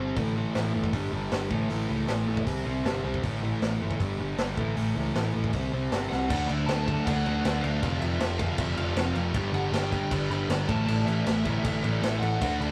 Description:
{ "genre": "punk rock", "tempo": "157 BPM", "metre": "4/4", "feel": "straight", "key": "unclear", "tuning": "A4 = 440 Hz", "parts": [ { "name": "sludgy distorted guitar", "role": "riff", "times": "0.0-12.7 s", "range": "F2 to D4", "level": "-38 LUFS", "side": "equal", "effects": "overdrive" }, { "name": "sludgy distorted guitar", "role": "riff", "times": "0.0-12.7 s", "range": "F2 to D4", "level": "-32 LUFS", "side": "equal", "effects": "overdrive" }, { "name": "overdriven picked electric bass", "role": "bass", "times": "0.0-12.7 s", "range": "F1 to D2", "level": "-34 LUFS", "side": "equal", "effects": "none" }, { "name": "raw garage drum kit", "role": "drums", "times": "0.2-12.7 s", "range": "crash cymbal, hi-hat, kick drum, snare drum", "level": "-34 LUFS", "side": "equal", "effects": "none" }, { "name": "lead guitar through a small cranked amp", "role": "melody", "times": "6.1-12.7 s", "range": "E5 to B5", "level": "-37 LUFS", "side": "equal", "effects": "overdrive" }, { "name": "scooped high-gain guitar", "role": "riff", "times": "6.3-12.7 s", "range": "F2 to F#4", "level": "-39 LUFS", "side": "equal", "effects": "distortion" } ], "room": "moderate booth ambience, RT60 0.2 s", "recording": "rough rehearsal-room recording, tube saturation", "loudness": "-28 LUFS", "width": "mono", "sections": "0.0-6.3 A section; 6.3-12.7 B section", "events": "drum fill 6.1", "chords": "0.2 A5; 0.9 G5; 1.5 A; 2.5 C5; 3.2 A5; 4.0 G5; 4.6 A; 5.5 C5; 6.3 D; 7.8 F; 9.4 G; 10.7 A" }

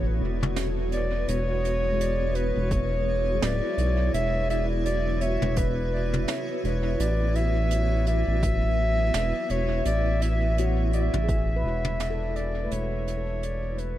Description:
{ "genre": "ambient dub", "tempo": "84 BPM", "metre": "4/4", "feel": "swing 59% on 16ths", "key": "E mixolydian", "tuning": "A4 = 441 Hz", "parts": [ { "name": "dark clarinet", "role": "melody", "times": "0.0-14.0 s", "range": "B4 to E5", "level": "-29 LUFS", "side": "equal", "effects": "tape echo" }, { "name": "granular cloud pad", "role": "sustained chords", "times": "0.0-14.0 s", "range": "B3 to E5", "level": "-32 LUFS", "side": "equal", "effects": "built-in reverb" }, { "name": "handpan", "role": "arpeggios", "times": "0.0-6.2, 10.6-13.4 s", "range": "G#3 to B4", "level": "-38 LUFS", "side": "left 5 dB", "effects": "tape echo" }, { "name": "round analog bass", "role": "bass", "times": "0.0-14.0 s", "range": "D1 to B1", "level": "-26 LUFS", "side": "equal", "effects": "tube saturation" }, { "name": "jazz brush drum kit", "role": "drums", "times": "0.4-14.0 s", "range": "hi-hat, snare drum, toms", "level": "-34 LUFS", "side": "right 1 dB", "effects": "dub echo" }, { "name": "electronic kick drum", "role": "drums", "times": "2.7-11.5 s", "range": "none", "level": "-29 LUFS", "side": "equal", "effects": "overdrive" } ], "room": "small room ambience", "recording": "none", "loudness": "-23 LUFS", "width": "side -13 dB against mid", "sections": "0.0-14.0 A section", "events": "fade-out 10.8-14.0", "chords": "0.0 A5; 1.3 E; 7.0 A5" }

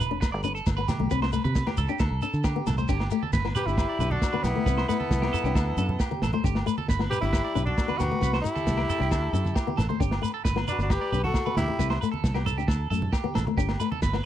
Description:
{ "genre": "highlife guitar band", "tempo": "135 BPM", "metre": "4/4", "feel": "straight", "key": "G major", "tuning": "A4 = 440 Hz", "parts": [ { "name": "clean electric guitar", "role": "arpeggios", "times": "0.0-14.2 s", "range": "G4 to D5", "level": "-33 LUFS", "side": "right 8 dB", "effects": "phaser, slapback echo" }, { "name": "fingered electric bass", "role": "bass", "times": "0.0-14.2 s", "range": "E1 to D3", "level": "-28 LUFS", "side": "right 1 dB", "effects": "none" }, { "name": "congas", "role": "percussion", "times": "0.0-14.1 s", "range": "none", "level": "-34 LUFS", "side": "right 3 dB", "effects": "none" }, { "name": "shekere", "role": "percussion", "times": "0.0-14.1 s", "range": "none", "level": "-35 LUFS", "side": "left 4 dB", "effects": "none" }, { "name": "flamenco guitar", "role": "accompaniment", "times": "0.1-14.3 s", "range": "A3 to D4", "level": "-32 LUFS", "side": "left 10 dB", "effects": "none" }, { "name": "crunchy breakbeat drum kit", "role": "drums", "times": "0.2-14.2 s", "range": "crash cymbal, kick drum, snare drum", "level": "-28 LUFS", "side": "equal", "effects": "none" }, { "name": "agogo bells", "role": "percussion", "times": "0.2-14.2 s", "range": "none", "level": "-39 LUFS", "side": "left 12 dB", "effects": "none" }, { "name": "raspy tenor saxophone", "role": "melody", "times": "3.6-12.0 s", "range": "B3 to G4", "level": "-30 LUFS", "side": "equal", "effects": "none" }, { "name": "warm trumpet", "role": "second line", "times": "3.6-12.0 s", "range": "E4 to B4", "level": "-35 LUFS", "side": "left 7 dB", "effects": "none" } ], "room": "small room ambience", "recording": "dry, close 1970s-style studio recording", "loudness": "-24 LUFS", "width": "side -11 dB against mid", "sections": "0.0-2.9 A section; 2.9-14.3 B section", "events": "none", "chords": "0.0 G; 1.1 C5; 2.0 D5; 2.9 G; 4.7 Cmaj7; 5.6 Dsus2; 6.4 G; 8.2 Cmaj7; 9.1 Dsus2; 10.0 G; 11.8 C5; 12.7 D5; 13.6 G" }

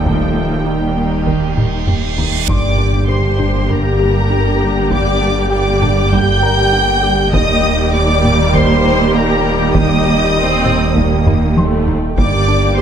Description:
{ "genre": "cinematic, hybrid orchestral and electronic film score", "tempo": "99 BPM", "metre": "4/4", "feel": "straight", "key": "G minor", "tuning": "A4 = 440 Hz", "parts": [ { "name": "rich symphonic violin section", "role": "melody", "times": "0.0-12.8 s", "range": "G5 to G6", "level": "-21 LUFS", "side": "equal", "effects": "none" }, { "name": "warm symphonic violin section", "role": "second line", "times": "0.0-12.8 s", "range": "G4 to G5", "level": "-22 LUFS", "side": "left 2 dB", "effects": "none" }, { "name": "rich symphonic viola section", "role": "accompaniment", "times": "0.0-12.8 s", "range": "Eb3 to G4", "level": "-21 LUFS", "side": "right 1 dB", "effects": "none" }, { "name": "warbly tape-like pad", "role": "sustained chords", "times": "0.0-12.8 s", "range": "G3 to G5", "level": "-23 LUFS", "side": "left 2 dB", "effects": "chorus, built-in reverb" }, { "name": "rich symphonic cello section", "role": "bass", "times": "0.0-12.8 s", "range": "Eb2 to G2", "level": "-20 LUFS", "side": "right 2 dB", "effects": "none" }, { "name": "rich symphonic double bass section", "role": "bass", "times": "0.0-12.8 s", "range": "G1 to Eb2", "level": "-20 LUFS", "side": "right 3 dB", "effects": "none" }, { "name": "sub bass with octave", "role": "bass", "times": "0.0-12.8 s", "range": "Eb1 to G1", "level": "-22 LUFS", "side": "equal", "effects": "none" }, { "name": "dark baby grand piano", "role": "texture", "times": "0.0-12.8 s", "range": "Bb4 to D6", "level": "-30 LUFS", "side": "left 2 dB", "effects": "digital delay" }, { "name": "mellow French horn section", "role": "sustained chords", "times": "0.1-12.8 s", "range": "Bb2 to G4", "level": "-26 LUFS", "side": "left 4 dB", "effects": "none" }, { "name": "mallet-like synth pluck", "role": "arpeggios", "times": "0.1-12.8 s", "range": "Eb3 to G4", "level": "-24 LUFS", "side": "right 2 dB", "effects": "none" }, { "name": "taiko ensemble", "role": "drums", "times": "0.1-12.7 s", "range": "none", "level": "-18 LUFS", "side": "equal", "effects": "none" }, { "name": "reverse cymbal and impact", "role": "sound effects", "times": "1.3-4.9 s", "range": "none", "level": "-25 LUFS", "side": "right 1 dB", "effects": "none" }, { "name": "bright trombone section", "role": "sustained chords", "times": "2.5-12.8 s", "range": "D3 to G3", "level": "-24 LUFS", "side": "right 4 dB", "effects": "none" } ], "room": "light reverb", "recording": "close, detailed microphones", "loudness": "-11 LUFS", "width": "side -8 dB against mid", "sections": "0.0-2.5 A section; 2.5-12.8 A section", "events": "reverse cymbal 1.3-2.5; drum fill 1.6-2.5, 11.3-12.2; impact 2.5-4.9", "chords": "0.0 Eb; 2.5 Gm; 7.3 Eb; 12.2 Gm" }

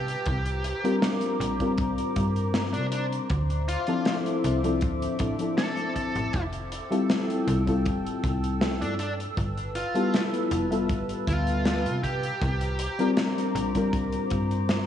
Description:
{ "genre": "vaporwave", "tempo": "79 BPM", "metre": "4/4", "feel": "straight", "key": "unclear", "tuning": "A4 = 439 Hz", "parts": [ { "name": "smooth overdriven lead guitar", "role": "melody", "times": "0.0-13.1 s", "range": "D4 to A4", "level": "-34 LUFS", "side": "equal", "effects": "tape echo" }, { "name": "warbly tape-like pad", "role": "sustained chords", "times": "0.0-14.9 s", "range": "A4 to E6", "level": "-35 LUFS", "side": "equal", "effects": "chorus, built-in reverb" }, { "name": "slap-like FM bass", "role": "bass", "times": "0.0-14.9 s", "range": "F1 to C3", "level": "-29 LUFS", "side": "equal", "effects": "none" }, { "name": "modern studio drum kit", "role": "drums", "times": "0.1-14.8 s", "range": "hi-hat, snare drum", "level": "-30 LUFS", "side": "left 1 dB", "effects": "gated reverb" }, { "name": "kick drum", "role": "drums", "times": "0.3-14.5 s", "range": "none", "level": "-32 LUFS", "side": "equal", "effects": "none" }, { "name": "mellow FM electric piano", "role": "accompaniment", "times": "0.8-14.9 s", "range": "F3 to E5", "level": "-27 LUFS", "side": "left 2 dB", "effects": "wide subtle chorus, analog delay" } ], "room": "moderate scoring stage reverb, RT60 2.1 s", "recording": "none", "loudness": "-24 LUFS", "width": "side -10 dB against mid", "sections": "0.0-14.9 A section", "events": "none", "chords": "0.0 C9sus4; 3.3 Dm9; 6.3 Fmaj9; 9.0 G13; 12.0 C9sus4" }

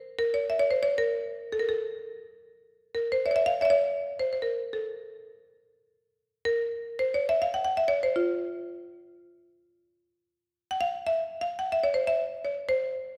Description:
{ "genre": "Persian modal ensemble", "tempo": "free time", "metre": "none", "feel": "none", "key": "F dastgah chahargah", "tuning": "A4 = 440 Hz", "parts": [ { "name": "buzzing marimba with hard mallets", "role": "solo", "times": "0.0-13.2 s", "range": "F4 to Gb5+45c", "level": "-28 LUFS", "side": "equal", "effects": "none" } ], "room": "moderate scoring stage reverb, RT60 1.6 s", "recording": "none", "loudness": "-28 LUFS", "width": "mono", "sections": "0.0-10.4 A section; 10.4-13.2 A section", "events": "none", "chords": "none" }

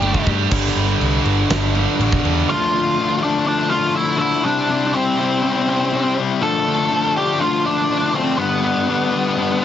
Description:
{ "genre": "quiet-loud alternative rock", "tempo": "122 BPM", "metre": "4/4", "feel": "straight", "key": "D dorian", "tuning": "A4 = 440 Hz", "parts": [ { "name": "octave-fuzz lead guitar", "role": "melody", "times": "0.0-9.6 s", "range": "B3 to A5", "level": "-19 LUFS", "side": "right 1 dB", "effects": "distortion" }, { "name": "twelve-string electric guitar", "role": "arpeggios", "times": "0.0-0.5 s", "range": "G3 to D4", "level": "-28 LUFS", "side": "right 6 dB", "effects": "wide subtle chorus" }, { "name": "fuzz guitar", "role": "riff", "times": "0.0-9.6 s", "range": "G2 to G4", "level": "-20 LUFS", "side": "left 6 dB", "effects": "distortion" }, { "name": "high-gain distorted guitar", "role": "riff", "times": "0.0-2.5 s", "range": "G2 to G4", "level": "-22 LUFS", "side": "right 12 dB", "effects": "distortion" }, { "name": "overdriven picked electric bass", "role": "bass", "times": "0.0-2.4 s", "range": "G1 to G2", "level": "-20 LUFS", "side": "right 1 dB", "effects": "none" }, { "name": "huge arena drum kit", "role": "drums", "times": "0.0-2.4 s", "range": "crash cymbal, kick drum, snare drum", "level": "-23 LUFS", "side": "right 1 dB", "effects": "none" } ], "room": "light reverb", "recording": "heavily compressed radio sound, multiband compression, nothing above 7.6 kHz", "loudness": "-16 LUFS", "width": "side -10 dB against mid", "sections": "0.5-2.5 A section; 2.5-9.6 B section", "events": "none", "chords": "0.0 Gsus2; 0.5 G5; 2.5 Dm; 4.5 Cadd9; 6.4 Dm; 8.4 G" }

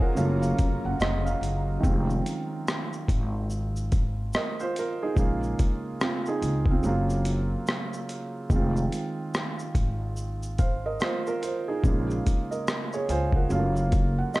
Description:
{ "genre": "lo-fi hip hop", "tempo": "72 BPM", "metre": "4/4", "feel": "swing 62% on 16ths", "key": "F phrygian", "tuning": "A4 = 441 Hz", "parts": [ { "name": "felt-muted upright piano", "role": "accompaniment", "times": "0.0-14.4 s", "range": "Db3 to Ab5", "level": "-29 LUFS", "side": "right 2 dB", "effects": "low-pass filter" }, { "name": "granular cloud pad", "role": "sustained chords", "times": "0.0-1.8 s", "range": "Gb3 to Bb5", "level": "-38 LUFS", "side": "left 2 dB", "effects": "built-in reverb, low-pass filter" }, { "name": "upright bass", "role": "bass", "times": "0.2-14.2 s", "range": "F1 to Db2", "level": "-28 LUFS", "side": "equal", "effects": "none" }, { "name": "boom bap sampler-style drum kit", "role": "drums", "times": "0.2-14.4 s", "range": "hi-hat, kick drum, rim click, shaker", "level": "-26 LUFS", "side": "equal", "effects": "none" } ], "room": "light reverb, digital ambience", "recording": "dark, warm production", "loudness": "-24 LUFS", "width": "side -19 dB against mid", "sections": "0.0-1.8 A section; 1.8-14.4 B section", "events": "none", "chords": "0.2 Gbmaj7; 1.8 Fm7; 5.2 Bbm7; 6.8 Gbmaj7; 8.5 Fm7; 11.8 Bbm7; 13.5 Gbmaj7" }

